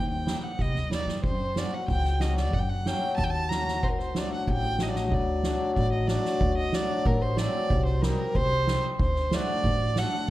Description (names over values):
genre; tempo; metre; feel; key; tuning
klezmer; 93 BPM; 2/4; straight; D phrygian dominant; A4 = 440 Hz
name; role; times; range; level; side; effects
warm violin; melody; 0.0-10.3 s; Bb4 to A#5; -31 LUFS; right 2 dB; none
cimbalom; accompaniment; 0.0-10.1 s; F#3 to A4; -31 LUFS; left 3 dB; none
upright bass; bass; 0.0-10.0 s; A1 to F#2; -29 LUFS; equal; none
soft-mallet drum kit; drums; 0.3-10.1 s; kick drum, snare drum; -30 LUFS; right 1 dB; none
room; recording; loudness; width
moderate recital hall reverb, RT60 1.8 s; dark, warm production; -24 LUFS; side -15 dB against mid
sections
0.0-6.4 A section; 6.4-10.3 B section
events
none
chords
0.0 Eb; 1.2 F#; 3.8 D; 7.7 Cm; 9.0 D